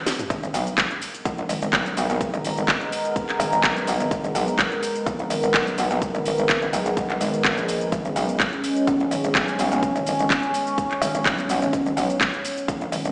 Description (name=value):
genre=bass house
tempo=126 BPM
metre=4/4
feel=swing 54% on 16ths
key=G# minor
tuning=A4 = 440 Hz
part: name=house drum kit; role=drums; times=0.1-13.1 s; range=handclaps, hi-hat, shaker, snare drum, toms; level=-27 LUFS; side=equal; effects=none
part: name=sweeping resonant pad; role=sustained chords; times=0.3-13.1 s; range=G#3 to A#4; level=-28 LUFS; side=equal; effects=chorus, phaser, sidechain pumping
part: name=metallic wobble bass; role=bass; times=0.3-13.1 s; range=G#1 to B1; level=-27 LUFS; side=equal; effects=chorus, tube saturation, sidechain pumping
part: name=electronic kick drum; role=drums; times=0.3-12.8 s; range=none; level=-30 LUFS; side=equal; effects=none
room=moderate digital room reverb, RT60 1.2 s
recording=played on a big sound system in a bare room, stone room reverb, small speaker sound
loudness=-23 LUFS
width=mono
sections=0.0-13.1 A section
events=drum fill 0.0-0.3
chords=0.0 G#madd9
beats=| 0.30 0.78 1.25 1.73 | 2.21 2.68 3.16 3.64 | 4.11 4.59 5.06 5.54 | 6.02 6.49 6.97 7.45 | 7.92 8.40 8.87 9.35 | 9.83 10.30 10.78 11.26 | 11.73 12.21 12.68